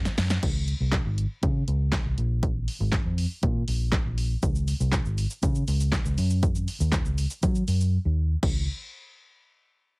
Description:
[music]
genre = dance-pop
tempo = 120 BPM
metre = 4/4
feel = straight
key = Db major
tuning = A4 = 439 Hz
[part]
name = vintage muted fingered electric bass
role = bass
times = 0.0-8.7 s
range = Ab1 to Gb3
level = -25 LUFS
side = equal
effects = sidechain pumping
[part]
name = punchy analog drum machine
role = drums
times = 0.1-8.5 s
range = crash cymbal, handclaps, hi-hat, kick drum, shaker, snare drum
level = -27 LUFS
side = equal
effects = none
[sound]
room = little or no reverb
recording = heavily compressed radio sound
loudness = -23 LUFS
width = side -34 dB against mid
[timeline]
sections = 0.4-8.4 A section; 8.4-10.0 B section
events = drum fill 0.0-0.4; silent gap 7.9-8.4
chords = none

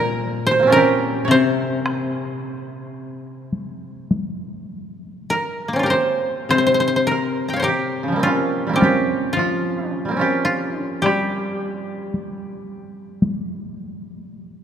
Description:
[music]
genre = japanese traditional, Japanese chamber music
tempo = 49-56 BPM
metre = 4/4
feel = rubato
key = C in sen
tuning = A4 = 442 Hz
[part]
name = koto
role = melody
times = 0.0-13.1 s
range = Bb3 to Bb5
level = -22 LUFS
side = equal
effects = none
[part]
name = koto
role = second line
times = 0.0-13.1 s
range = Db3 to Db5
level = -20 LUFS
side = right 3 dB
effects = none
[part]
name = koto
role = accompaniment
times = 0.0-14.3 s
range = Bb2 to G3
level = -25 LUFS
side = left 5 dB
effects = none
[part]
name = solo taiko drums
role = percussion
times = 1.9-13.5 s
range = none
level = -25 LUFS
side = left 1 dB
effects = none
[sound]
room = wet cathedral reverb, RT60 4.3 s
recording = none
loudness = -18 LUFS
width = side -8 dB against mid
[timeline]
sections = 0.0-6.5 A section; 6.5-14.6 B section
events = none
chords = none

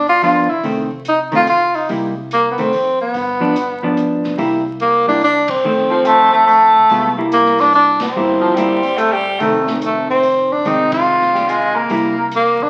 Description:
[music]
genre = jazz, small-group swing and bop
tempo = 144 BPM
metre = 3/4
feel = swing 64% on 8ths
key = unclear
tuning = A4 = 440 Hz
[part]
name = clear tenor saxophone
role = melody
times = 0.0-12.7 s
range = A3 to F4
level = -16 LUFS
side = equal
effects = none
[part]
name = upright bass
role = bass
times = 0.0-12.7 s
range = E1 to F2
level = -34 LUFS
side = equal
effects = none
[part]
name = swinging big-band drum kit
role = drums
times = 0.1-12.7 s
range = hi-hat, kick drum, ride cymbal, snare drum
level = -35 LUFS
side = equal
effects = none
[part]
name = hollow-body jazz guitar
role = accompaniment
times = 0.2-12.2 s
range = Eb3 to F4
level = -22 LUFS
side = equal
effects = none
[part]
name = warm baritone saxophone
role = second line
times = 5.9-12.3 s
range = F3 to Bb3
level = -15 LUFS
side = equal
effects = none
[sound]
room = wet large studio reverb, RT60 0.9 s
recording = very old 78 rpm record, vinyl crackle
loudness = -15 LUFS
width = mono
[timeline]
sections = 0.0-4.4 A section; 4.4-12.7 A section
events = band accent 5.4, 7.9, 10.9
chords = 0.0 G7; 0.6 F7; 1.9 C7; 2.7 F5; 3.1 G7; 4.4 C7; 5.6 F7; 6.9 C7; 9.4 F7; 10.7 Fm7; 11.9 C7

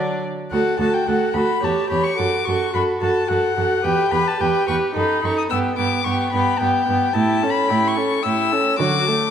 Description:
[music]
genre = quick classical-period movement for string quartet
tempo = 109 BPM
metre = 3/4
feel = straight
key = D major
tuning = A4 = 440 Hz
[part]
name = rich violin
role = melody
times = 0.0-9.3 s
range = D5 to E6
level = -22 LUFS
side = left 6 dB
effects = none
[part]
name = rich violin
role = second line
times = 0.0-9.3 s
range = D4 to C#5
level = -24 LUFS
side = left 1 dB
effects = none
[part]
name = warm viola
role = accompaniment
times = 0.0-9.3 s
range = F#3 to G4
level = -22 LUFS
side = right 3 dB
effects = none
[part]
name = warm cello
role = bass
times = 0.0-9.3 s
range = D2 to D3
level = -25 LUFS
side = right 4 dB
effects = none
[sound]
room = wet scoring stage reverb, RT60 2.0 s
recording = none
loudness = -17 LUFS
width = side -8 dB against mid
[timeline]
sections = 0.5-9.3 A section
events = none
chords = 0.0 D; 1.6 A7; 2.2 F#m; 3.8 Em; 5.0 B7/F#; 5.5 G; 7.1 A7; 8.8 D

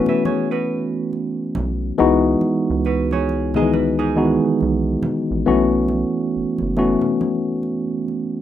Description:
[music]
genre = R&B, neo-soul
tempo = 69 BPM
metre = 4/4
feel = swing 59% on 16ths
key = unclear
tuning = A4 = 440 Hz
[part]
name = vintage hollow-body jazz guitar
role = second line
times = 0.0-5.3 s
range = D#4 to E5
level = -26 LUFS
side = right 7 dB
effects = none
[part]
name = mellow tine electric piano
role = accompaniment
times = 0.0-8.4 s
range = D#3 to G#4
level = -18 LUFS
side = moving between left 5 dB and right 5 dB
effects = auto-pan
[part]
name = congas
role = percussion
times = 0.1-8.3 s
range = none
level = -32 LUFS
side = right 4 dB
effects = none
[part]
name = rubbery square bass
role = bass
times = 1.6-7.0 s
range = F#1 to C#2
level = -25 LUFS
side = right 1 dB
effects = none
[sound]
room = moderate studio reverb, RT60 0.6 s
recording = rough home demo mix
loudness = -17 LUFS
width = side -11 dB against mid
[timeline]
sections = 0.0-8.4 A section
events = none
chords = 0.0 B7sus4; 2.0 C#m11; 5.5 B7sus4

